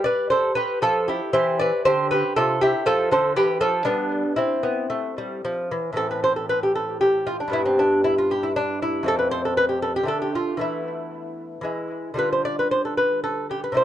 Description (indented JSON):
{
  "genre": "classical, baroque-style dance for lute",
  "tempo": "116 BPM",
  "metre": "3/4",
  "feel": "rubato",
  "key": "C major, A minor from 6.0 s",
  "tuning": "A4 = 440 Hz",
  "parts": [
    { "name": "lute", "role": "solo", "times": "0.0-13.8 s", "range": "F2 to D5", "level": "-20 LUFS", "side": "equal", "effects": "tape echo" }
  ],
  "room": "light reverb",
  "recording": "dark, warm production, nothing above 10.6 kHz",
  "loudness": "-20 LUFS",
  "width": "side -11 dB against mid",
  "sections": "0.0-6.0 A section; 6.0-13.8 A section",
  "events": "none",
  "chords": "0.0 G7; 1.3 C; 2.9 F; 3.9 G; 4.4 C; 6.0 Am; 7.5 G6; 9.1 F; 10.1 Dm; 10.6 Esus4; 11.7 E; 12.2 G5/D"
}